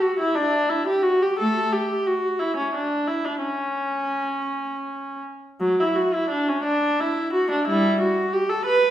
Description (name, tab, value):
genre	classical, baroque-style suite movement for unaccompanied viola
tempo	52-61 BPM (dotted quarters)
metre	6/8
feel	rubato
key	D major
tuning	A4 = 439 Hz
part	rich viola	solo	0.0-8.9 s	F#3 to B4	-20 LUFS	equal	none
room	wet recital hall reverb, RT60 1.3 s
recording	recorded in a church or concert hall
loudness	-20 LUFS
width	side -11 dB against mid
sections	0.0-5.6 A section; 5.6-8.9 B section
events	none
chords	none